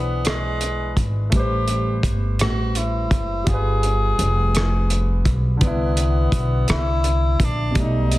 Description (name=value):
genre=slow six-eight R&B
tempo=56 BPM (dotted quarters)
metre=6/8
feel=straight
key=unclear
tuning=A4 = 445 Hz
part: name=mellow tenor saxophone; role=melody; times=0.0-8.2 s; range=G#3 to Ab4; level=-26 LUFS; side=left 1 dB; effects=none
part: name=clear concert grand piano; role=accompaniment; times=0.0-8.2 s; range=B2 to D5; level=-27 LUFS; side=equal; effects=none
part: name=upright bass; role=bass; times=0.0-8.2 s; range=F1 to C2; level=-21 LUFS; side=equal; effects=none
part: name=cloth-damped thuddy drum kit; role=drums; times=0.2-8.2 s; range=hi-hat, kick drum, rim click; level=-22 LUFS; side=equal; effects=soft clipping on kick, soft clipping on snare
room=small room ambience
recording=dense, heavily limited modern master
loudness=-18 LUFS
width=side -17 dB against mid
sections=0.0-8.2 A section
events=none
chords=0.0 E7; 1.3 Am9; 3.5 G7b9; 5.6 Cmaj9